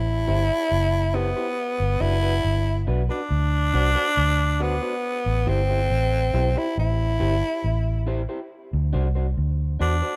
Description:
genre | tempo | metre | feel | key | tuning
roots reggae | 69 BPM | 4/4 | straight | D mixolydian | A4 = 440 Hz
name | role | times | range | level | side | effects
growling tenor saxophone | melody | 0.0-10.2 s | B3 to E4 | -27 LUFS | equal | none
vintage muted fingered electric bass | bass | 0.0-10.0 s | F#1 to E2 | -25 LUFS | equal | tube saturation
electric guitar through a small old amp | accompaniment | 0.3-10.1 s | D4 to C5 | -35 LUFS | equal | none
room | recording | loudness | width
light reverb, studio ambience | rough home demo mix | -23 LUFS | mono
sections
0.0-8.5 A section; 8.5-10.2 B section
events
tenor saxophone solo 8.5-10.2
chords
0.0 Am7; 1.6 Gmaj7; 3.3 D7; 5.0 Am7; 8.5 D7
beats
0.70 | 1.57 2.44 3.30 4.17 | 5.03 5.90 6.76 7.63 | 8.49 9.36

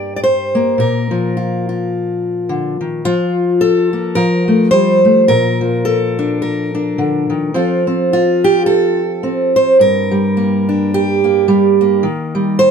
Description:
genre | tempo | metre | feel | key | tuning
folk, solo fingerstyle acoustic guitar | 107 BPM | 4/4 | swing 57% on 8ths | Bb major | A4 = 444 Hz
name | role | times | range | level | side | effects
fingerpicked steel-string acoustic guitar | solo | 0.0-12.7 s | G2 to D5 | -12 LUFS | equal | none
room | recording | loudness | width
light reverb | close, detailed microphones | -12 LUFS | side -6 dB against mid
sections
0.0-7.5 A section; 7.5-12.7 B section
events
none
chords
0.0 Gm; 0.8 Bb; 3.0 Bb5/F; 4.2 F; 5.3 Bb; 7.5 F; 9.8 Gm; 12.0 Eb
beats
0.23 | 0.79 1.35 1.92 2.48 | 3.05 3.61 4.17 4.74 | 5.30 5.86 6.42 6.99 | 7.55 8.11 8.67 9.23 | 9.80 10.36 10.92 11.48 | 12.04 12.60

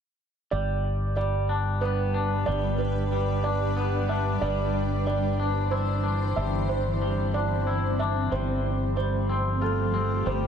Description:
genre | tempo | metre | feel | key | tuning
rock | 62 BPM (dotted quarters) | 6/8 | straight | G major | A4 = 440 Hz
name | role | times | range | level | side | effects
granular cloud pad | sustained chords | 1.6-10.5 s | E3 to C5 | -31 LUFS | equal | built-in reverb
felt-muted upright piano | arpeggios | 0.5-10.5 s | A4 to E5 | -31 LUFS | right 7 dB | analog delay
twangy electric guitar | arpeggios | 0.5-10.5 s | G3 to F4 | -30 LUFS | left 5 dB | lush chorus, analog delay
fingered electric bass | bass | 0.5-10.5 s | G1 | -27 LUFS | equal | none
room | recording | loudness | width
light reverb, digital ambience | none | -24 LUFS | side -7 dB against mid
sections
0.5-10.5 A section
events
none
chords
0.5 G; 4.4 Cadd9/G; 8.3 Fadd9/G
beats
| 0.53 1.50 | 2.48 3.45 | 4.42 5.40 | 6.37 7.34 | 8.32 9.29 | 10.26

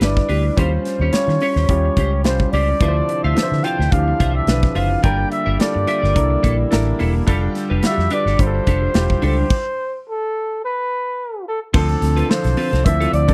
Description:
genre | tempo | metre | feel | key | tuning
polished 1980s jazz-funk pop | 107 BPM | 4/4 | swing 54% on 16ths | unclear | A4 = 441 Hz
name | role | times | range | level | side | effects
breathy flugelhorn | melody | 0.0-13.3 s | A4 to G5 | -24 LUFS | equal | slapback echo
clear grand piano | accompaniment | 0.0-13.3 s | E3 to Db5 | -26 LUFS | equal | lush chorus
clean electric guitar | riff | 0.0-13.3 s | Bb3 to F5 | -28 LUFS | equal | lush chorus
fingered electric bass with an envelope filter | bass | 0.0-13.3 s | E1 to Eb3 | -21 LUFS | equal | none
modern studio drum kit | drums | 0.0-13.3 s | crash cymbal, hi-hat, kick drum, snare drum | -21 LUFS | equal | none
pipe organ, cornet | sustained chords | 2.8-13.3 s | C3 to G4 | -31 LUFS | equal | none
room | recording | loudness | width
studio ambience | dry, close 1970s-style studio recording | -18 LUFS | mono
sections
0.0-11.7 A section; 11.7-13.3 B section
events
stop 9.5-11.7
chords
0.0 Em7; 0.6 Eb13; 2.8 Dm9; 5.0 Gm7; 6.2 C13; 7.3 F69; 9.5 N.C.; 11.7 Dm7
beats
0.01 | 0.57 1.13 1.69 2.25 | 2.80 3.36 3.92 4.48 | 5.04 5.60 6.16 6.71 | 7.27 7.83 8.39 8.95 | 9.51 10.07 10.63 11.19 | 11.74 12.30 12.86

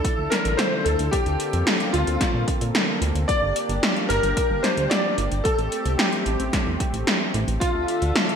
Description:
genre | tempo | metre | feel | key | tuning
synthwave | 111 BPM | 4/4 | straight | D minor | A4 = 441 Hz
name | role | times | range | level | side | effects
warm electric grand piano | melody | 0.0-8.4 s | F4 to D5 | -25 LUFS | left 1 dB | ensemble chorus, digital delay, shimmer reverb
warm analog pad | sustained chords | 0.0-8.4 s | D3 to E5 | -29 LUFS | equal | chorus, sidechain pumping, shimmer reverb
80s electronic pad drums | drums | 0.0-8.4 s | hi-hat, snare drum | -24 LUFS | equal | gated reverb
electronic kick drum | drums | 0.0-7.7 s | none | -26 LUFS | equal | none
chorused synth bass | bass | 0.2-8.1 s | G1 to Bb2 | -25 LUFS | equal | tube saturation
room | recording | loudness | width
moderate plate reverb, RT60 2.1 s | bright 1980s-style digital production | -20 LUFS | side -7 dB against mid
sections
0.0-8.4 A section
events
none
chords
0.0 Dmadd9; 1.1 Bbmaj7/D; 3.3 Gm; 5.5 Am7; 7.6 Dmadd9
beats
0.05 0.59 | 1.13 1.67 2.21 2.75 | 3.29 3.83 4.37 4.91 | 5.45 5.99 6.53 7.07 | 7.61 8.15

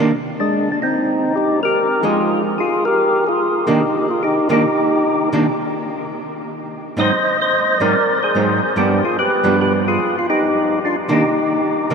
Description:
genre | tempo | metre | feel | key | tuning
jazz | 146 BPM | 4/4 | swing 65% on 8ths | C minor | A4 = 440 Hz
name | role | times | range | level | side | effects
archtop guitar, miked and amplified | accompaniment | 0.0-11.9 s | G2 to Eb4 | -21 LUFS | right 2 dB | none
percussive tonewheel organ | melody | 0.4-11.9 s | Ab3 to Eb5 | -16 LUFS | left 1 dB | slow rotary speaker, overdrive
room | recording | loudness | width
wet huge ambient reverb, RT60 7.6 s | in a vast, echoing space | -15 LUFS | side -6 dB against mid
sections
0.0-11.9 A section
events
none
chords
0.0 Cm9; 0.5 Fm9; 3.8 Cm9; 7.1 Ab7; 8.8 G7; 10.4 Cm9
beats
0.11 | 0.52 0.93 1.34 1.75 | 2.17 2.58 2.99 3.40 | 3.81 4.23 4.64 5.05 | 5.46 5.87 6.29 6.70 | 7.11 7.52 7.93 8.34 | 8.76 9.17 9.58 9.99 | 10.40 10.81 11.22 11.63

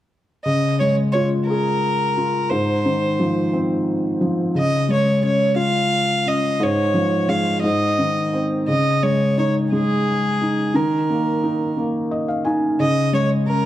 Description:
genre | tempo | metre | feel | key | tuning
children's music, lullaby | 59 BPM (dotted quarters) | 6/8 | rubato | Db major | A4 = 440 Hz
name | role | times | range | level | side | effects
rich violin | melody | 0.5-13.7 s | Ab4 to F5 | -21 LUFS | right 1 dB | none
felt-muted upright piano | accompaniment | 0.5-13.7 s | Ab2 to Ab5 | -19 LUFS | left 1 dB | none
room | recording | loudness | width
moderate concert hall reverb, RT60 2.2 s | dark, warm production | -17 LUFS | side -13 dB against mid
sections
0.4-13.7 A section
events
felt piano fill 11.8-12.8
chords
0.4 Db; 2.5 Ab6; 4.5 Db; 6.6 Db/Ab; 7.6 Ab; 8.7 Dbsus2; 10.8 Ebsus24; 12.8 Db5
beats
| 0.45 1.49 | 2.52 3.53 | 4.55 5.57 | 6.59 7.63 | 8.68 9.72 | 10.75 11.78 | 12.79

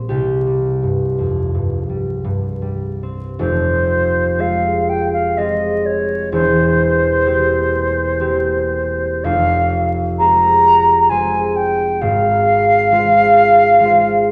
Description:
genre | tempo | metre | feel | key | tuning
classical, romantic duo for flute and harp | 49-67 BPM | 3/4 | rubato | F minor | A4 = 438 Hz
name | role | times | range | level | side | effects
concert harp | accompaniment | 0.0-14.3 s | E1 to C5 | -20 LUFS | equal | none
silver concert flute | melody | 3.4-14.3 s | C5 to Bb5 | -16 LUFS | equal | none
room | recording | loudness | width
wet recital hall reverb, RT60 1.4 s | recorded in a church or concert hall, vinyl crackle | -15 LUFS | mono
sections
0.0-3.4 A section; 3.4-14.3 B section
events
none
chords
0.1 C5; 3.4 Fm; 6.3 C7/E; 9.2 Fm; 12.0 Fm/Ab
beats
| 0.09 1.19 2.25 | 3.39 4.39 5.38 | 6.33 7.26 8.20 | 9.24 10.19 11.10 | 12.01 12.91 13.81

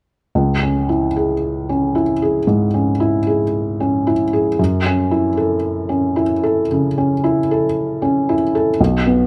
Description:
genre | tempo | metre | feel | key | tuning
classical | 57 BPM | 4/4 | rubato | F# minor | A4 = 440 Hz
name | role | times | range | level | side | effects
felt-muted upright piano | accompaniment | 0.4-9.3 s | B1 to A4 | -17 LUFS | equal | none
room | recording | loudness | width
light reverb | dark, warm production | -17 LUFS | mono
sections
0.3-9.3 A section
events
none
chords
0.3 C#m; 4.6 F#m7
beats
| 0.34 1.42 2.48 3.54 | 4.59 5.64 6.70 7.75 | 8.79

